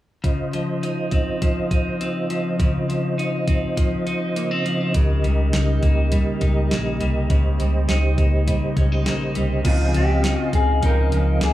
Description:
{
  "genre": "dream pop",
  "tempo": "102 BPM",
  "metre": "4/4",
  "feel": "straight",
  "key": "Db lydian",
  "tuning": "A4 = 442 Hz",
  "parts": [
    { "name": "mellow tonewheel organ", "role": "sustained chords", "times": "0.2-11.5 s", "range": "Db3 to F5", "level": "-26 LUFS", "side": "right 2 dB", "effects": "chorus vibrato, slow rotary speaker" },
    { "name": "clean electric guitar", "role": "arpeggios", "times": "0.2-11.5 s", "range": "Db3 to Eb4", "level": "-24 LUFS", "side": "left 2 dB", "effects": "lush chorus, tape echo" },
    { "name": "crisp 8-bit digital drum machine", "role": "drums", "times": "0.2-11.5 s", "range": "crash cymbal, hi-hat, kick drum, snare drum", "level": "-22 LUFS", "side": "equal", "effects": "none" },
    { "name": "vintage muted fingered electric bass", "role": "bass", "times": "4.9-11.5 s", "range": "Bb1 to Db2", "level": "-20 LUFS", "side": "equal", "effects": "none" },
    { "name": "mellow electric guitar", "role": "accompaniment", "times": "9.6-11.5 s", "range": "Db3 to Ab4", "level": "-28 LUFS", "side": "right 1 dB", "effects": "tremolo, ensemble chorus" },
    { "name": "mellow electric guitar", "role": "melody", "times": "9.7-11.5 s", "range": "F4 to Bb4", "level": "-24 LUFS", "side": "left 1 dB", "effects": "spring reverb, tape echo" }
  ],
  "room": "light reverb",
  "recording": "small room reverb",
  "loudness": "-18 LUFS",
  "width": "side -14 dB against mid",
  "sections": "0.2-9.7 A section; 9.7-11.5 B section",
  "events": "none",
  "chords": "0.2 Dbmaj9; 4.9 Eb7; 9.7 Dbmaj9",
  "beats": "| 0.24 0.83 1.42 2.00 | 2.59 3.18 3.77 4.36 | 4.95 5.53 6.12 6.71 | 7.30 7.89 8.47 9.06 | 9.65 10.24 10.83 11.42"
}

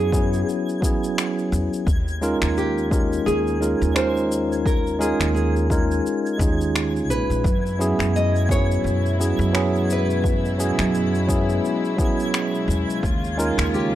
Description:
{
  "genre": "sunset chillout",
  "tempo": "86 BPM",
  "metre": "4/4",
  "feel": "swing 57% on 16ths",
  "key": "unclear",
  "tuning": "A4 = 439 Hz",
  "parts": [
    { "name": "nylon-string guitar", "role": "melody", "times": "0.0-13.9 s", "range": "G4 to Eb5", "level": "-27 LUFS", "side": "right 1 dB", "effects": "vintage 12-bit sampler grit, analog delay" },
    { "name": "bright tine electric piano", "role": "accompaniment", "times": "0.0-13.9 s", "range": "Gb3 to Bb4", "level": "-23 LUFS", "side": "moving between left 5 dB and right 4 dB", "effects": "auto-pan, analog delay" },
    { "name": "upright bass", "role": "bass", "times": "0.0-13.9 s", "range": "Bb1 to Gb2", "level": "-24 LUFS", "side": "equal", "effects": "none" },
    { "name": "twinkling granular texture", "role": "texture", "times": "0.0-13.9 s", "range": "Ab6", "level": "-36 LUFS", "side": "right 1 dB", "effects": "built-in reverb" },
    { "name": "electronic kick drum", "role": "drums", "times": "0.1-13.2 s", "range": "none", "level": "-22 LUFS", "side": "equal", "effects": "none" },
    { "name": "electronic shaker and finger snaps", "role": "drums", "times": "0.1-13.9 s", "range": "none", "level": "-29 LUFS", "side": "left 1 dB", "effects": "none" },
    { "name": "dark studio string section", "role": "sustained chords", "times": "7.4-13.9 s", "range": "Cb3 to F4", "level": "-29 LUFS", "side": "left 2 dB", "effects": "none" }
  ],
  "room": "digital ambience",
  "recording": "dry, gritty hardware recording",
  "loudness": "-19 LUFS",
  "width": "side -13 dB against mid",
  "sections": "0.0-13.9 A section",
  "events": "none",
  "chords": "0.0 Gb9sus4; 1.9 Eb9sus4; 7.5 Gb9sus4; 13.0 Eb9sus4",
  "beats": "0.48 1.18 | 1.87 2.57 3.27 3.96 | 4.66 5.36 6.06 6.76 | 7.45 8.15 8.85 9.55 | 10.24 10.94 11.64 12.34 | 13.04 13.73"
}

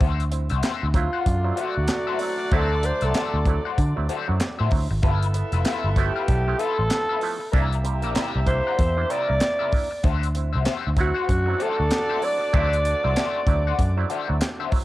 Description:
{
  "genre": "funk",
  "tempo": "96 BPM",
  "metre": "4/4",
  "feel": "swing 60% on 16ths",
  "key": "D mixolydian",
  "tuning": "A4 = 440 Hz",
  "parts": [
    { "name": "electric guitar at the edge of break-up", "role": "accompaniment", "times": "0.0-14.8 s", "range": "F4 to F#5", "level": "-30 LUFS", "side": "left 8 dB", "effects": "wah, cassette tape" },
    { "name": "auto-wah clav", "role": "stabs", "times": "0.0-14.8 s", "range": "G2 to E4", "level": "-33 LUFS", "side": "right 8 dB", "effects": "cassette tape" },
    { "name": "vintage muted picked electric bass", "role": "bass", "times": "0.0-14.4 s", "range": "F1 to D3", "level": "-23 LUFS", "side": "equal", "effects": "none" },
    { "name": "tight funk drum kit", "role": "drums", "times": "0.0-14.8 s", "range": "handclaps, hi-hat, kick drum, snare drum", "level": "-24 LUFS", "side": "equal", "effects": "cassette tape" },
    { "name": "growling alto saxophone", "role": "melody", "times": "1.0-14.4 s", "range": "F4 to D5", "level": "-25 LUFS", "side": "equal", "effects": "cassette tape" },
    { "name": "clear horn section", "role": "second line", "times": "1.3-14.7 s", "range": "F#3 to E5", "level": "-32 LUFS", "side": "equal", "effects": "cassette tape" }
  ],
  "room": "light reverb",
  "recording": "home recording on cassette",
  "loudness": "-20 LUFS",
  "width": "side -16 dB against mid",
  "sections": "0.0-14.8 A section",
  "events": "none",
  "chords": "0.0 D9; 5.0 G13; 7.5 C9; 10.0 D9",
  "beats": "| 0.01 0.64 1.26 1.89 | 2.52 3.15 3.78 4.40 | 5.03 5.66 6.29 6.91 | 7.54 8.17 8.79 9.42 | 10.04 10.67 11.30 11.92 | 12.55 13.17 13.80 14.42"
}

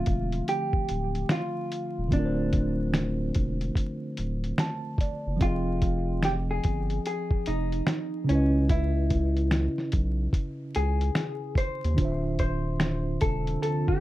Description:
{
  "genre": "lo-fi hip hop",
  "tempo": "73 BPM",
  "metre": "4/4",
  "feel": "swing 63% on 16ths",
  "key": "D minor",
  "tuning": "A4 = 440 Hz",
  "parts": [
    { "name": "vintage hollow-body jazz guitar", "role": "melody", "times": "0.0-14.0 s", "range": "C#4 to C5", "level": "-31 LUFS", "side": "left 1 dB", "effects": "low-pass filter" },
    { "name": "mellow tine electric piano", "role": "accompaniment", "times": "0.0-14.0 s", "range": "C#3 to A5", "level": "-31 LUFS", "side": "right 1 dB", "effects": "medium stereo tremolo, low-pass filter" },
    { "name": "saturated sub bass", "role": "bass", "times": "0.0-13.6 s", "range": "D1 to Eb2", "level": "-28 LUFS", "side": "equal", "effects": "none" },
    { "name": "lo-fi sampler-style drum kit", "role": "drums", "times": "0.1-14.0 s", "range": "finger snaps, hi-hat, kick drum, snare drum", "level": "-27 LUFS", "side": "equal", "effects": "none" },
    { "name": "deep dark ambient pad", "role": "sustained chords", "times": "13.3-14.0 s", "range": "D3 to F4", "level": "-33 LUFS", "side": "equal", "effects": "chorus, built-in reverb, low-pass filter" }
  ],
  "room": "moderate studio reverb, RT60 0.5 s",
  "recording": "dark, warm production, vinyl crackle",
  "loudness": "-25 LUFS",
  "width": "side -15 dB against mid",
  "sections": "0.0-14.0 A section",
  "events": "tine electric piano fill 4.2-5.4",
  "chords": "0.0 Dm7; 5.4 Fm7; 8.3 C#m7; 12.0 Dm7",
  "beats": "0.47 1.30 | 2.12 2.94 3.76 4.58 | 5.41 6.23 7.05 7.87 | 8.69 9.52 10.34 11.16 | 11.98 12.80 13.63"
}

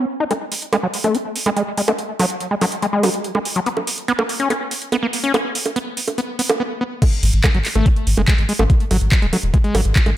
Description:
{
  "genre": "psychedelic trance",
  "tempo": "143 BPM",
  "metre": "4/4",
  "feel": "straight",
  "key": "G# phrygian",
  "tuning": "A4 = 439 Hz",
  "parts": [
    { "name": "overdriven acid bass", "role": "riff", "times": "0.0-10.1 s", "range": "F#3 to D#4", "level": "-21 LUFS", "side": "equal", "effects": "distortion, auto-pan, sidechain pumping, digital delay" },
    { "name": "garage drum kit", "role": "drums", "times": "0.3-10.1 s", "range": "bongos, crash cymbal, handclaps, hi-hat", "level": "-22 LUFS", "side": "right 2 dB", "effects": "overdrive, studio reverb" },
    { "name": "electronic kick drum", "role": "drums", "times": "7.0-10.0 s", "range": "none", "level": "-15 LUFS", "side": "equal", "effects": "overdrive, studio reverb" },
    { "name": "round analog bass", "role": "bass", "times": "7.2-10.1 s", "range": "D#1 to G#1", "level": "-18 LUFS", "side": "equal", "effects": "none" }
  ],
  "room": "light reverb, digital ambience",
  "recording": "none",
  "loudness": "-16 LUFS",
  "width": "side -13 dB against mid",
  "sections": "0.3-7.0 A section; 7.0-10.2 B section",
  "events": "build-up 0.3-7.0; filter sweep on acid bass 0.3-7.0; break 6.6-7.0; drop 7.0-10.2",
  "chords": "0.3 G#5; 3.7 A#m; 7.0 G#5",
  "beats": "| 0.31 0.73 1.15 1.56 | 1.99 2.40 2.82 3.24 | 3.66 4.08 4.50 4.92 | 5.34 5.76 6.18 6.60 | 7.02 7.44 7.86 8.28 | 8.70 9.12 9.54 9.96"
}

